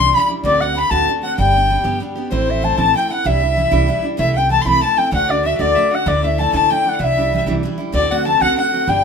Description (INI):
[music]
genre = celtic folk, Celtic jig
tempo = 128 BPM (dotted quarters)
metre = 6/8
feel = straight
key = unclear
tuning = A4 = 440 Hz
[part]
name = bright reedy baroque flute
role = melody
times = 0.0-9.0 s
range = C5 to C6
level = -17 LUFS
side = left 2 dB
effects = none
[part]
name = rich fiddle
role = second line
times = 0.0-9.0 s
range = C5 to C6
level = -22 LUFS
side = left 5 dB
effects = none
[part]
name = picked steel-string acoustic guitar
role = accompaniment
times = 0.0-9.0 s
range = D2 to G4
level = -22 LUFS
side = right 2 dB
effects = none
[part]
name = upright bass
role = bass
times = 0.0-9.0 s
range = G1 to D2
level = -21 LUFS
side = right 1 dB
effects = none
[sound]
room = moderate studio reverb, RT60 0.6 s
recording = minimal, uncompressed stereo recording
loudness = -14 LUFS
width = side -6 dB against mid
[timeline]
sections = 0.0-2.3 A section; 2.3-9.0 A section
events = none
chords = 0.4 D7; 1.4 G; 2.3 Am; 3.3 Cadd9; 4.2 Am/C; 5.1 D; 6.1 Dsus2; 7.0 Cadd9; 7.9 D7